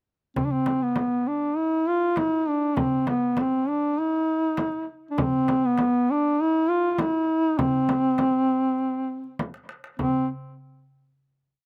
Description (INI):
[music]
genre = Arabic maqam ensemble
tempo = 100 BPM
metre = 4/4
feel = straight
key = C maqam suznak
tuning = A4 = 440 Hz
[part]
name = mellow duduk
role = melody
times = 0.4-10.3 s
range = B3 to F4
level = -24 LUFS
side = equal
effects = none
[part]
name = darbuka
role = percussion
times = 0.4-10.3 s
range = none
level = -36 LUFS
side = equal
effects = none
[part]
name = frame drum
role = percussion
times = 0.4-10.3 s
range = none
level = -32 LUFS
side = equal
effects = none
[sound]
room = light reverb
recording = recorded outdoors, with no room sound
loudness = -24 LUFS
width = mono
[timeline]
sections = 0.4-10.0 A section; 10.0-11.7 final note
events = drum fill 9.4-10.0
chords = none